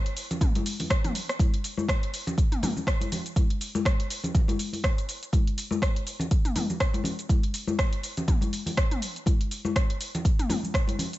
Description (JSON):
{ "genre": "house", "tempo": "122 BPM", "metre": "4/4", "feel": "swing 56% on 16ths", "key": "none", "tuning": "none", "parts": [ { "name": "deep house drum kit", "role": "drums", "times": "0.1-11.2 s", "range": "hi-hat, rim click, shaker, toms", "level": "-31 LUFS", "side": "equal", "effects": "overdrive" }, { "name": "congas", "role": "percussion", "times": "0.3-11.1 s", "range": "none", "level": "-31 LUFS", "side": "left 2 dB", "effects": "none" }, { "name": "electronic kick drum", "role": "drums", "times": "0.4-10.9 s", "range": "none", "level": "-24 LUFS", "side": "equal", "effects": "none" } ], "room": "digital ambience", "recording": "nothing above 7.9 kHz", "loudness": "-24 LUFS", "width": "side -16 dB against mid", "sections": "0.0-11.2 A section", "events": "none", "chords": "none", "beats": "0.41 0.90 | 1.40 1.89 2.38 2.87 | 3.36 3.85 4.35 4.84 | 5.33 5.82 6.31 6.81 | 7.30 7.79 8.28 8.77 | 9.27 9.76 10.25 10.74" }